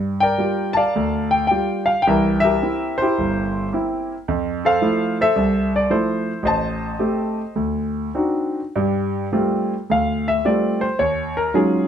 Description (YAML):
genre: solo jazz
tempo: 108 BPM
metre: 4/4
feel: swing 69% on 8ths, rubato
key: unclear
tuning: A4 = 440 Hz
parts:
  - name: clear concert grand piano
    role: solo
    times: 0.0-11.9 s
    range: G1 to A5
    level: -18 LUFS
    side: equal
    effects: none
room: moderate studio reverb, RT60 0.8 s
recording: band playing live in one room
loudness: -18 LUFS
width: side -8 dB against mid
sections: 0.0-8.8 A section; 8.8-11.9 B section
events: grand piano solo 8.8-11.9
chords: 0.0 Gm7; 2.1 C7; 4.3 Fmaj7; 6.5 Am7b5; 7.6 D7b9; 8.8 Gm11; 11.0 Ebm11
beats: 0.39 0.96 1.52 | 2.08 2.64 3.19 3.74 | 4.29 4.83 5.37 5.91 | 6.45 7.00 7.57 8.16 | 8.76 9.33 9.89 10.44 | 11.00 11.55